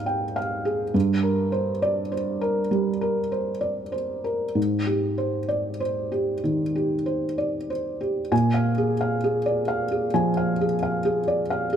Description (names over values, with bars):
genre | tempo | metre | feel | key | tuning
neoclassical minimalist piano | 63-68 BPM | 4/4 | rubato | unclear | A4 = 441 Hz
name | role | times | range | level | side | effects
felt-muted upright piano | solo | 0.0-11.8 s | G2 to Ab5 | -22 LUFS | right 1 dB | none
room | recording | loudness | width
moderate stone room reverb, RT60 1.3 s | none | -22 LUFS | side -8 dB against mid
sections
0.0-8.3 A section; 8.3-11.8 A section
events
none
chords
0.0 Fm7/Ab; 0.9 C5/G; 4.6 Abmaj7; 8.3 Bb7